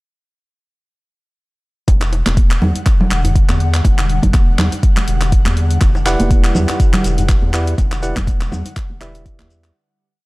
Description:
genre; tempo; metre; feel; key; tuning
afro house; 122 BPM; 4/4; swing 56% on 16ths; E minor; A4 = 440 Hz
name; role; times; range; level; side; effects
ethereal airy pad; sustained chords; 2.3-9.7 s; D3 to F#5; -26 LUFS; left 2 dB; ensemble chorus, built-in reverb, sidechain pumping
round analog bass; bass; 1.9-9.7 s; E1 to E2; -18 LUFS; equal; sidechain pumping
deep house drum kit; drums; 1.9-9.7 s; handclaps, hi-hat; -24 LUFS; equal; overdrive
electronic kick drum; drums; 1.9-9.4 s; none; -14 LUFS; equal; overdrive
congas; percussion; 1.9-9.5 s; none; -21 LUFS; right 1 dB; none
djembe; percussion; 1.9-8.7 s; none; -26 LUFS; left 1 dB; none
shekere; percussion; 5.8-9.7 s; none; -34 LUFS; left 2 dB; none
tine electric piano; stabs; 6.1-9.7 s; E4 to F#5; -22 LUFS; right 2 dB; vintage 12-bit sampler grit, sidechain pumping, tape echo
room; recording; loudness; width
digital ambience; dry, gritty hardware recording; -12 LUFS; side -22 dB against mid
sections
1.9-9.7 drop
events
drop 1.9-9.7; fade-out 7.1-9.7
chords
1.9 Em9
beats
| 1.88 2.37 2.86 3.36 | 3.85 4.34 4.83 5.32 | 5.82 6.31 6.80 7.29 | 7.78 8.27 8.77 9.26

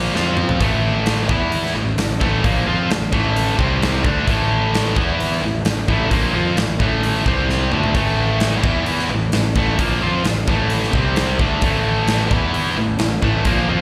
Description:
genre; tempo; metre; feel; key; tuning
hard rock; 131 BPM; 4/4; straight; A minor; A4 = 440 Hz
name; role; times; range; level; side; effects
heavy high-gain guitar; riff; 0.0-13.8 s; A2 to F4; -24 LUFS; equal; distortion, slapback echo
tight distorted guitar; riff; 0.0-13.8 s; A2 to F4; -26 LUFS; equal; distortion, slapback echo
fuzz fingered electric bass; bass; 0.0-13.8 s; A1 to F2; -24 LUFS; equal; overdrive
huge arena drum kit; drums; 0.2-13.6 s; hi-hat, kick drum, snare drum, toms; -24 LUFS; equal; none
room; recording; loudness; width
light reverb; live gig heard through the venue's PA, recital hall reverb; -18 LUFS; mono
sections
0.6-13.8 A section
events
drum fill 0.1-0.6, 7.5-7.9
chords
0.1 F5; 0.6 A5; 1.3 E5; 1.7 Am; 3.6 C5; 4.0 A5; 5.0 E5; 5.4 Am; 7.3 C5; 7.7 A5; 8.6 E5; 9.1 Am; 10.9 C5; 11.4 A5; 12.3 E5; 12.8 Am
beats
0.14 | 0.60 1.06 1.52 1.98 | 2.44 2.90 3.35 3.81 | 4.27 4.73 5.19 5.65 | 6.11 6.57 7.03 7.49 | 7.95 8.41 8.87 9.33 | 9.79 10.24 10.70 11.16 | 11.62 12.08 12.54 13.00 | 13.46

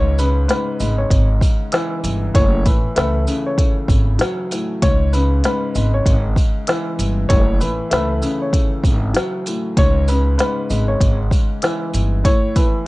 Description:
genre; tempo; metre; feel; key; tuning
hip hop, boom-bap hip-hop; 97 BPM; 4/4; swing 61% on 16ths; C# minor; A4 = 440 Hz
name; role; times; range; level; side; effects
dark upright piano; melody; 0.0-12.8 s; B4 to C#5; -23 LUFS; left 1 dB; high-pass filter, low-pass filter
dark upright piano; accompaniment; 0.0-12.9 s; G#2 to A3; -22 LUFS; left 1 dB; high-pass filter, low-pass filter
upright bass; bass; 0.0-12.2 s; F#1 to C#2; -18 LUFS; equal; none
organic electronic drum kit; drums; 0.2-12.7 s; hi-hat, kick drum, shaker, snare drum; -17 LUFS; equal; none
sleigh bells; percussion; 0.2-12.7 s; none; -35 LUFS; right 4 dB; none
room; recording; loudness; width
small room ambience; worn, warbling old tape, cassette tape, warbly pitch drift, nothing above 10.8 kHz; -15 LUFS; side -20 dB against mid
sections
0.0-12.9 A section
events
none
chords
0.0 C#m; 2.3 F#m7; 4.8 C#m; 7.3 F#m7; 9.8 C#m; 12.2 F#m7 (rootless)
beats
0.49 1.11 1.73 | 2.35 2.97 3.59 4.21 | 4.82 5.44 6.06 6.68 | 7.30 7.92 8.54 9.15 | 9.77 10.39 11.01 11.63 | 12.25 12.87

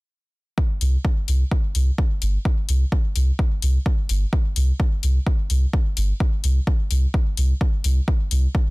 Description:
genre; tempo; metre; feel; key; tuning
dub techno; 128 BPM; 4/4; swing 55% on 16ths; unclear; A4 = 441 Hz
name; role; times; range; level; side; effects
electronic kick drum; drums; 0.6-8.6 s; none; -20 LUFS; equal; overdrive, studio reverb
soft dub sub bass; bass; 0.8-8.5 s; G1 to C2; -18 LUFS; equal; sidechain pumping
electronic hi-hat; drums; 0.8-8.4 s; none; -31 LUFS; left 8 dB; overdrive, studio reverb
room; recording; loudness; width
digital ambience; dense, heavily limited modern master; -19 LUFS; side -24 dB against mid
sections
0.6-8.7 A section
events
none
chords
none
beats
| 0.58 1.05 1.51 1.98 | 2.45 2.92 3.39 3.86 | 4.33 4.80 5.26 5.73 | 6.20 6.67 7.14 7.61 | 8.08 8.55

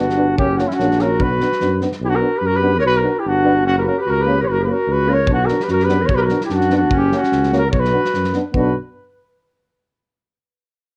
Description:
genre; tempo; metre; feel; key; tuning
balkan folk, Balkan brass band; 147 BPM; 2/4; swing 55% on 16ths; B harmonic minor; A4 = 442 Hz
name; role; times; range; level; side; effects
dark trumpet; melody; 0.0-8.8 s; E4 to C#5; -21 LUFS; equal; plate reverb
warm clarinet; second line; 0.0-8.7 s; C#4 to A#4; -24 LUFS; equal; none
warm euphonium; accompaniment; 0.0-8.7 s; C#4 to D4; -26 LUFS; equal; none
warm euphonium; accompaniment; 0.0-8.7 s; A#3 to B3; -28 LUFS; equal; none
mellow tuba; bass; 0.0-8.7 s; F#1 to F#2; -23 LUFS; equal; none
loose indie drum kit; percussion; 0.1-2.0, 5.3-8.7 s; kick drum, snare drum; -26 LUFS; equal; none
room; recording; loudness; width
moderate studio reverb, RT60 0.5 s; worn, warbling old tape, cassette tape, warbly pitch drift; -17 LUFS; mono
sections
0.0-2.0 A section; 2.0-8.5 A section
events
none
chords
0.4 F#; 1.2 Bm; 3.7 F#; 5.3 Bm; 6.9 F#; 7.7 Bm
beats
| 0.38 0.79 | 1.20 1.61 | 2.02 2.43 | 2.84 3.24 | 3.65 4.06 | 4.47 4.88 | 5.29 5.69 | 6.10 6.51 | 6.92 7.33 | 7.73 8.14 | 8.55

